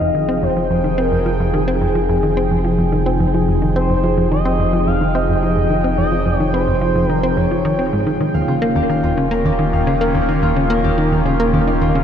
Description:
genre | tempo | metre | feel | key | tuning
ambient, sequencer-driven space music | 108 BPM | 4/4 | straight | F minor | A4 = 440 Hz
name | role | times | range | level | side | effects
expressive portamento lead | melody | 0.0-8.2 s | Ab4 to F5 | -22 LUFS | left 1 dB | wide subtle chorus, cassette tape, shimmer reverb, analog delay
sweeping resonant pad | sustained chords | 0.0-12.0 s | C3 to G5 | -20 LUFS | equal | chorus, shimmer reverb
plucky analog bass | riff | 0.0-12.0 s | Eb2 to C4 | -18 LUFS | equal | shimmer reverb, analog delay
warm sub bass | bass | 0.0-12.0 s | Eb1 to F1 | -22 LUFS | equal | none
concert harp | arpeggios | 8.3-12.0 s | F4 to F5 | -22 LUFS | left 4 dB | auto-pan, shimmer reverb, analog delay
room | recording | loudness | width
moderate lush hall reverb, RT60 2.7 s | dark, warm production | -14 LUFS | side -8 dB against mid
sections
0.0-12.0 A section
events
none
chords
0.0 Fm7; 8.2 Eb7

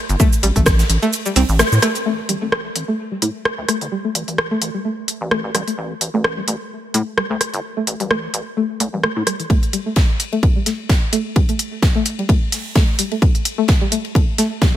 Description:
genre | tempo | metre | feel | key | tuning
minimal techno | 129 BPM | 4/4 | swing 55% on 16ths | A minor | A4 = 439 Hz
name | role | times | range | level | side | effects
rubbery square bass | bass | 0.1-9.2 s | G1 to A2 | -21 LUFS | equal | sidechain pumping, high-pass filter
minimal click drum kit | drums | 0.1-14.5 s | hi-hat, rim click, shaker | -20 LUFS | equal | none
string-like resonator pluck | riff | 0.2-14.6 s | E3 to C4 | -22 LUFS | left 1 dB | chorus, cassette tape, sidechain pumping, dub echo
electronic kick drum | drums | 0.2-0.8, 9.5-14.7 s | none | -14 LUFS | equal | none
gated 80s drum kit | drums | 0.2-2.1, 9.5-14.7 s | hi-hat, ride cymbal, snare drum | -28 LUFS | left 2 dB | sidechain pumping on cymbals, high-pass filter on cymbals, sidechain pumping on hats, high-pass filter on hats, high-pass filter on snare, high-pass filter on room
room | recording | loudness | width
light reverb, small room reverb | none | -16 LUFS | side -12 dB against mid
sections
0.0-2.1 A section; 2.1-9.5 B section; 9.5-14.8 C section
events
drop 0.0-2.1; kick drops out 1.1-2.1; band accent 1.6; build-up 9.5-14.8; filter sweep on synth pluck 9.5-14.8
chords
0.0 A5

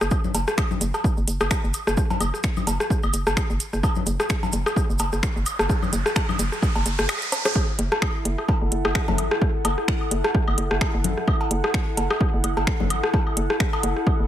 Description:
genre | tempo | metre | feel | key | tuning
minimal techno | 129 BPM | 4/4 | swing 56% on 16ths | F# minor | A4 = 440 Hz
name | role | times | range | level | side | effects
hollow knocking FM bass | bass | 0.0-14.3 s | F#1 to G#1 | -25 LUFS | equal | sidechain pumping
cabasa | percussion | 0.0-7.5 s | none | -36 LUFS | right 6 dB | none
electronic rim click, woodblock, congas and cowbell | percussion | 0.0-14.2 s | none | -26 LUFS | left 1 dB | overdrive
electronic kick drum | drums | 0.1-14.2 s | none | -23 LUFS | equal | overdrive
house drum kit | drums | 0.3-13.9 s | finger snaps, hi-hat, rim click | -28 LUFS | equal | overdrive
riser | sound effects | 4.9-7.6 s | none | -32 LUFS | right 3 dB | none
warbly tape-like pad | texture | 7.8-14.3 s | E4 to F#5 | -29 LUFS | left 1 dB | chorus, built-in reverb, sidechain pumping
room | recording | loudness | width
digital ambience | none | -20 LUFS | side -11 dB against mid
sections
0.0-7.6 A section; 7.6-14.3 B section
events
riser 4.9-7.6; band accent 7.1; drum fill 7.3; drop 7.6-14.3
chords
0.0 N.C.; 7.6 F#m7

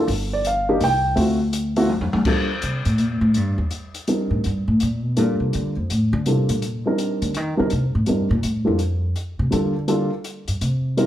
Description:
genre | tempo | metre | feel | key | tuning
jazz piano trio | 165 BPM | 3/4 | swing 64% on 8ths | G minor | A4 = 439 Hz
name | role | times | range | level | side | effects
dark baby grand piano | melody | 0.0-11.1 s | G3 to G5 | -21 LUFS | equal | plate reverb
upright bass | bass | 0.1-11.1 s | G1 to Eb3 | -21 LUFS | equal | none
open jazz drum kit | drums | 0.1-11.1 s | crash cymbal, hi-hat, kick drum, toms | -28 LUFS | left 2 dB | none
room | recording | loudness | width
moderate large studio reverb, RT60 0.9 s | heard from further back in the room | -19 LUFS | side -12 dB against mid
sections
0.0-2.3 A section; 2.3-11.1 B section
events
drum fill 1.9-2.3; upright bass solo 2.3-11.1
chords
0.1 G7(no3); 0.8 C5; 1.2 D7#9; 2.3 N.C.; 3.4 Cm7; 4.4 Gm7; 6.6 Cm7; 8.8 G7(no3) (rootless)

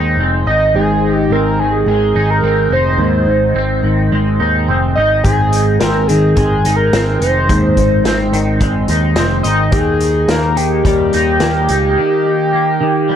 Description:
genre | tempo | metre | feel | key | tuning
psychedelic rock | 107 BPM | 4/4 | straight | Ab major | A4 = 441 Hz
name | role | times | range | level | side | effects
twangy electric guitar | riff | 0.0-13.2 s | Ab2 to Eb4 | -16 LUFS | equal | rotary speaker, double-tracked left and right, dub echo
picked electric bass | bass | 0.0-12.0 s | F1 to Eb2 | -16 LUFS | equal | none
overdriven synth lead | melody | 0.5-13.2 s | G4 to Eb5 | -16 LUFS | equal | distortion, chorus, dub echo
vintage drum kit | drums | 5.2-11.8 s | hi-hat, kick drum, snare drum | -19 LUFS | equal | none
room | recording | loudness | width
little or no reverb | echo-heavy mix | -11 LUFS | side -9 dB against mid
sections
0.0-13.2 A section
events
none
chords
0.0 Ab; 9.7 Eb

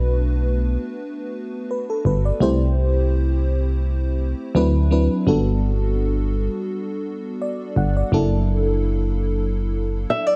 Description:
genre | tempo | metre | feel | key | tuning
R&B | 84 BPM | 4/4 | swing 54% on 16ths | G major | A4 = 440 Hz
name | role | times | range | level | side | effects
FM electric piano with soft pad layer | accompaniment | 0.0-10.4 s | F#3 to F#5 | -26 LUFS | equal | chorus
solid FM bass | bass | 0.0-10.1 s | F#1 to D2 | -22 LUFS | equal | none
nylon-string guitar | arpeggios | 10.1-10.4 s | D5 to E5 | -20 LUFS | equal | none
room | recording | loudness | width
light reverb, studio ambience | worn, warbling old tape, cassette tape, warbly pitch drift | -21 LUFS | mono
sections
0.0-10.4 A section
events
none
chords
0.0 Bm7; 2.4 C6; 4.6 D13; 5.3 Gmaj9; 8.1 F#7alt

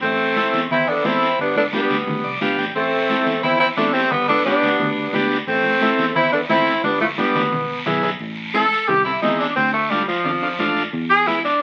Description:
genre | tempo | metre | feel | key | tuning
latin, cumbia | 176 BPM | 4/4 | straight | A minor, A harmonic minor from 8.2 s | A4 = 440 Hz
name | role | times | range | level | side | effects
warm saxophone section | melody | 0.0-11.6 s | F3 to A4 | -20 LUFS | equal | none
dark clarinet | second line | 0.0-7.5 s | E4 to C5 | -29 LUFS | equal | none
fingered electric bass | bass | 0.0-11.5 s | E1 to F2 | -32 LUFS | equal | none
guiro | percussion | 0.0-11.6 s | none | -30 LUFS | equal | none
combo organ | accompaniment | 0.4-11.4 s | B3 to G5 | -25 LUFS | equal | none
congas | percussion | 0.4-11.4 s | none | -32 LUFS | equal | none
room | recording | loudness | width
moderate studio reverb, RT60 0.7 s | very old 78 rpm record, vinyl crackle | -19 LUFS | mono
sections
0.0-8.2 A section; 8.2-11.6 B section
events
transistor combo organ fill 2.1-2.8; drum fill 6.8-8.2; saxophone section solo 8.2-11.6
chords
0.0 Am; 1.4 G; 2.8 Am; 4.1 G; 5.5 Am; 6.8 G; 7.5 E; 8.2 Am; 9.6 Dm; 10.9 E

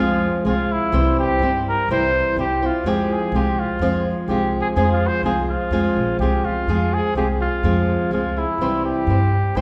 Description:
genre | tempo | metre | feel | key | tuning
mexican folk, mariachi | 125 BPM | 2/4 | straight | F harmonic minor | A4 = 441 Hz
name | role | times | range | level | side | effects
mellow trumpet | melody | 0.0-9.6 s | E4 to C5 | -25 LUFS | equal | none
flamenco guitar | accompaniment | 0.0-9.6 s | C3 to C5 | -23 LUFS | equal | none
upright bass | bass | 0.0-9.6 s | Bb1 to G2 | -26 LUFS | equal | none
room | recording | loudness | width
wet recital hall reverb, RT60 1.4 s | recorded in a church or concert hall | -20 LUFS | mono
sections
0.0-6.7 A section; 6.7-9.6 A section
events
none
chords
0.0 Fm; 0.9 C; 2.9 Fm; 8.6 C

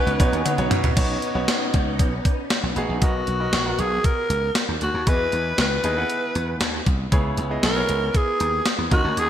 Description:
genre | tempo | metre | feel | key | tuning
1980s-style pop | 117 BPM | 4/4 | straight | B major | A4 = 440 Hz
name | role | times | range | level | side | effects
raspy alto saxophone | melody | 0.0-9.3 s | F#4 to B4 | -24 LUFS | equal | digital delay
synth chime | second line | 0.0-0.9 s | F#5 to G#5 | -33 LUFS | right 2 dB | ensemble chorus, phaser, digital delay
bright concert grand piano | accompaniment | 0.0-9.3 s | B2 to F#5 | -28 LUFS | right 1 dB | none
phased string machine | sustained chords | 0.0-3.0 s | B3 to D#4 | -30 LUFS | equal | ensemble chorus, phaser
slap bass | bass | 0.1-9.3 s | A1 to B2 | -26 LUFS | equal | none
gated 80s digital drum machine | drums | 0.1-9.3 s | crash cymbal, hi-hat, kick drum, snare drum, toms | -22 LUFS | equal | gated reverb, gated reverb snare
cowbell | percussion | 0.2-2.6 s | none | -38 LUFS | left 3 dB | none
room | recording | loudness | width
moderate lush hall reverb, RT60 1.9 s, digital ambience | bright 1980s-style digital production | -19 LUFS | side -10 dB against mid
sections
1.0-3.0 A section; 3.0-9.3 B section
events
drum fill 0.5-1.0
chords
0.0 Badd9; 3.0 Bmaj7; 5.1 Emaj7; 7.1 C#m7

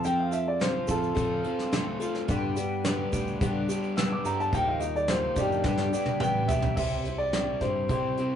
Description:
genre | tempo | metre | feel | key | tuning
folk rock and heartland rock | 107 BPM | 4/4 | straight | C major | A4 = 438 Hz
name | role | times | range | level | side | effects
dark baby grand piano | melody | 0.0-8.4 s | D4 to E6 | -29 LUFS | equal | none
dark upright piano | accompaniment | 0.0-6.8 s | D4 to Eb5 | -46 LUFS | right 5 dB | none
picked old ladder-braced acoustic guitar | accompaniment | 0.0-8.4 s | G2 to A4 | -33 LUFS | left 2 dB | none
crunchy overdriven guitar | riff | 0.0-8.4 s | C3 to F4 | -35 LUFS | equal | none
fingered electric bass | bass | 0.0-8.4 s | A1 to G3 | -34 LUFS | equal | none
soft brush drum kit | drums | 0.0-8.3 s | crash cymbal, hi-hat, kick drum, snare drum, toms | -30 LUFS | right 1 dB | none
egg shaker | percussion | 0.0-6.7 s | none | -47 LUFS | right 6 dB | none
room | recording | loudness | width
wet small room reverb, RT60 0.5 s | rough rehearsal-room recording, nothing above 10.5 kHz | -25 LUFS | side -9 dB against mid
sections
0.0-6.8 A section; 6.8-8.4 B section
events
grand piano solo 0.0-6.8; drum fill 5.7-6.8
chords
0.0 F; 2.3 G; 4.5 Ebadd9; 5.7 G; 6.8 C

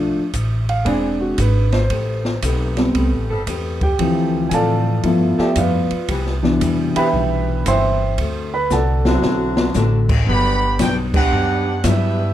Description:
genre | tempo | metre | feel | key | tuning
jazz, big band swing | 115 BPM | 4/4 | swing 66% on 8ths | G major | A4 = 441 Hz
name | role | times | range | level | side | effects
warm grand piano | accompaniment | 0.0-9.7 s | B2 to C6 | -18 LUFS | right 1 dB | none
upright bass | bass | 0.0-12.3 s | E1 to A2 | -20 LUFS | equal | none
open jazz drum kit | drums | 0.3-12.0 s | crash cymbal, hi-hat, kick drum, ride cymbal, snare drum | -24 LUFS | equal | none
mellow saxophone section | sustained chords | 0.8-10.0 s | D3 to A4 | -26 LUFS | left 1 dB | none
picked steel-string acoustic guitar | accompaniment | 1.9-12.2 s | G2 to B4 | -26 LUFS | left 5 dB | none
warm trumpet section | melody | 10.3-12.3 s | D4 to B5 | -21 LUFS | right 2 dB | none
warm trombone section | second line | 10.3-12.3 s | D3 to G4 | -23 LUFS | right 3 dB | none
room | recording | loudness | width
moderate large studio reverb, RT60 0.9 s | dark, warm production | -16 LUFS | side -12 dB against mid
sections
0.0-10.3 A section; 10.3-12.3 B section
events
grand piano solo 0.0-10.3; drum fill 8.7-9.7; band accent 11.1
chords
0.0 Bm7b5; 0.9 E7b13; 1.9 Am9; 4.0 Dm7; 5.0 G13; 6.1 Cmaj7; 8.2 D7; 10.3 Gmaj7

